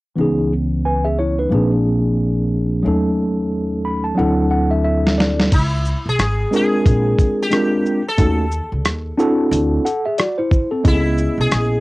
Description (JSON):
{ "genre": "hip hop, jazz-hop", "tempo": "90 BPM", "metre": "4/4", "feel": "swing 59% on 16ths", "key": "unclear", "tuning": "A4 = 439 Hz", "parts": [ { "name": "mellow tine electric piano", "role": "accompaniment", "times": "0.2-11.8 s", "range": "E3 to B5", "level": "-17 LUFS", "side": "equal", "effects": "medium stereo tremolo, cassette tape" }, { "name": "upright bass", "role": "bass", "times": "0.2-11.8 s", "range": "G#1 to D#2", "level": "-20 LUFS", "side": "equal", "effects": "transformer saturation" }, { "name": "dusty soul sampler-style drum kit", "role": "drums", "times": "5.1-11.7 s", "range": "crash cymbal, hi-hat, kick drum, rim click, shaker, snare drum", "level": "-17 LUFS", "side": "equal", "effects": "vintage 12-bit sampler grit, cassette tape" }, { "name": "sitar", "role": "melody", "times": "5.5-11.8 s", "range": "E4 to A4", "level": "-22 LUFS", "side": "left 1 dB", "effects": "cassette tape" } ], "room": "light reverb", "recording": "home recording on cassette", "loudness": "-15 LUFS", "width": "side -20 dB against mid", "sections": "0.2-5.5 A section; 5.5-11.8 B section", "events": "tine electric piano fill 3.5-5.5; drum fill 4.9-5.5", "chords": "0.2 C#m7; 1.5 A#7; 2.9 D#m7b5; 4.2 D9; 5.5 C#5; 6.9 A#7; 8.2 D#m7b5; 9.5 D9; 10.9 C#m7" }